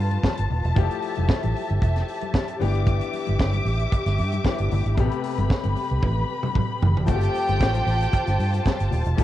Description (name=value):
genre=disco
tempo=114 BPM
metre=4/4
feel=straight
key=unclear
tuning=A4 = 440 Hz
part: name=bright grand piano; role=accompaniment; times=0.0-9.2 s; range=B2 to G4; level=-31 LUFS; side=left 11 dB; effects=none
part: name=dark studio string section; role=sustained chords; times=0.0-9.2 s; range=F4 to D6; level=-30 LUFS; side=left 1 dB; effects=none
part: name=vintage muted fingered electric bass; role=bass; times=0.0-9.2 s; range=D#1 to G2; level=-22 LUFS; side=right 1 dB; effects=none
part: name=tight funk drum kit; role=drums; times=0.1-9.2 s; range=hi-hat, kick drum, snare drum, toms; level=-23 LUFS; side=right 1 dB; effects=cassette tape
part: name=congas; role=percussion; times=0.1-9.2 s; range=none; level=-35 LUFS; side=left 9 dB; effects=none
part: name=clear studio violin section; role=second line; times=7.1-9.2 s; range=G4 to A5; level=-26 LUFS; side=right 1 dB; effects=none
part: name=tube shaker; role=percussion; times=7.1-9.2 s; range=none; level=-52 LUFS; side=right 14 dB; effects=none
room=little or no reverb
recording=home recording on cassette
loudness=-20 LUFS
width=side -13 dB against mid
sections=0.0-7.1 A section; 7.1-9.2 B section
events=drum fill 6.0-7.1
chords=0.0 G9sus4; 0.8 Fmaj9; 2.6 Em7/G; 5.0 Am9; 7.1 G9sus4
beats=0.24 | 0.76 1.29 1.82 2.34 | 2.87 3.40 3.92 4.45 | 4.98 5.50 6.03 6.55 | 7.08 7.61 8.13 8.66 | 9.19